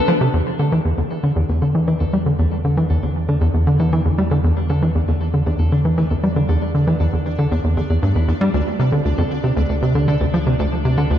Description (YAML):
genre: ambient, sequencer-driven space music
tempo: 117 BPM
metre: 4/4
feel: straight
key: unclear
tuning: A4 = 440 Hz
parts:
  - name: clean electric guitar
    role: arpeggios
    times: 0.0-11.2 s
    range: A3 to D5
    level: -31 LUFS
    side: left 3 dB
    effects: auto-pan, tape echo
  - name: pulsing gated texture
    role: texture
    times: 0.0-11.2 s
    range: B3 to D5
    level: -31 LUFS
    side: equal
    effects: chorus, built-in reverb
  - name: tight sequencer bass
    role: riff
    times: 0.1-11.2 s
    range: D2 to G3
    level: -16 LUFS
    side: equal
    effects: tape echo
  - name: warm sub bass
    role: bass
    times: 0.3-11.2 s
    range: D2 to E2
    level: -25 LUFS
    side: equal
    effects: none
room: moderate lush hall reverb, RT60 2.7 s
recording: dark, warm production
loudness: -16 LUFS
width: side -10 dB against mid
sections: 0.3-11.2 A section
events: fade-in on clean electric guitar 0.3-11.2; fade-in on synth texture 0.3-11.2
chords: 0.3 E7(no3); 8.5 D7(no3)